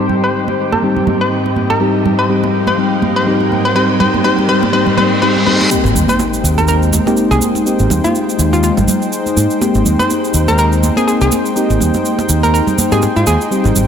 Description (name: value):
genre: deep house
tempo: 123 BPM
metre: 4/4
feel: swing 57% on 16ths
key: Ab major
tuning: A4 = 439 Hz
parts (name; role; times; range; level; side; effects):
- warm analog pad; sustained chords; 0.0-13.9 s; Ab2 to G5; -21 LUFS; equal; chorus
- mellow FM electric piano; stabs; 0.0-13.9 s; G3 to Ab4; -17 LUFS; left 2 dB; chorus, tape echo
- riser, reverse cymbal and impact; sound effects; 0.4-7.7 s; none; -22 LUFS; equal; none
- warbly tape-like pad; texture; 0.0-13.9 s; Ab3 to G5; -21 LUFS; left 3 dB; chorus, built-in reverb
- congas; percussion; 0.1-13.9 s; none; -20 LUFS; right 5 dB; none
- hollow square pluck; melody; 0.2-13.6 s; F4 to C5; -18 LUFS; equal; chorus, tape echo
- cabasa; percussion; 5.7-13.9 s; none; -22 LUFS; right 4 dB; none
- modern bright fingered electric bass; bass; 5.8-13.8 s; Ab1 to Ab2; -14 LUFS; right 1 dB; none
room: moderate lush hall reverb, RT60 2.7 s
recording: none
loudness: -11 LUFS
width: side -8 dB against mid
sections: 0.0-5.7 A section; 5.7-13.9 B section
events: build-up 0.0-5.7; filter sweep on analog synth pad 0.0-5.7; filter sweep on synth pluck 0.0-5.7; riser 0.4-5.7; reverse cymbal 4.7-5.7; drop 5.7-13.9; impact 5.7-7.7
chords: 0.0 Abmaj7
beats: 0.34 0.83 1.32 | 1.81 2.29 2.78 3.27 | 3.76 4.25 4.73 5.22 | 5.71 6.20 6.68 7.17 | 7.66 8.15 8.63 9.12 | 9.61 10.10 10.59 11.07 | 11.56 12.05 12.54 13.03 | 13.51